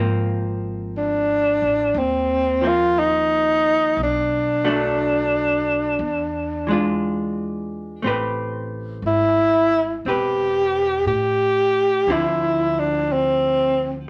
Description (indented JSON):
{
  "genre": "jazz ballad",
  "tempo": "59 BPM",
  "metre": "4/4",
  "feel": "swing 67% on 8ths",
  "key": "unclear",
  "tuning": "A4 = 440 Hz",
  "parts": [
    { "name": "vintage hollow-body jazz guitar", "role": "accompaniment", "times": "0.0-14.1 s", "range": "D3 to B4", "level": "-28 LUFS", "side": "equal", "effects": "none" },
    { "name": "upright bass", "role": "bass", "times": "0.0-14.1 s", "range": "E1 to A2", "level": "-32 LUFS", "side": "equal", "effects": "none" },
    { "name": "breathy tenor saxophone", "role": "melody", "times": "1.0-13.9 s", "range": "C4 to G4", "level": "-20 LUFS", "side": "equal", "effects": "none" }
  ],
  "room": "moderate club reverb, RT60 0.7 s",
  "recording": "none",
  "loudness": "-20 LUFS",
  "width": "mono",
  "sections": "0.0-14.1 A section",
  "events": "none",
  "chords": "0.0 Ab69; 4.0 Bm7; 6.0 E7b9; 8.0 Am9; 12.1 Dm9",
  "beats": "0.94 1.95 2.96 | 3.97 4.98 6.00 7.01 | 8.03 9.05 10.06 11.07 | 12.09 13.10"
}